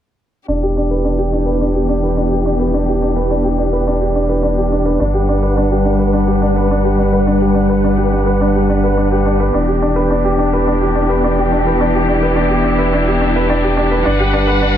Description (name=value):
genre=electronica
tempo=106 BPM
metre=4/4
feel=straight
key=E minor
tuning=A4 = 440 Hz
part: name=rich chamber string section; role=sustained chords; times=0.5-14.8 s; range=E3 to F#5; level=-17 LUFS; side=left 2 dB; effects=none
part: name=felt-muted upright piano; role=riff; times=0.5-14.8 s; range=D4 to B4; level=-16 LUFS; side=equal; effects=low-pass filter, digital delay
part: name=warm sub bass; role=bass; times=0.5-14.8 s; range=E1 to G1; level=-18 LUFS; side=right 1 dB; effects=none
room=moderate echo chamber reverb, RT60 2.4 s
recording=low-pass filter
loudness=-12 LUFS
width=side -10 dB against mid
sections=0.5-14.8 A section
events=filter sweep on felt piano 0.5-14.8; filter sweep 0.5-14.8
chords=0.5 Em7; 5.0 Gmaj7; 9.5 Em7; 14.1 Gmaj7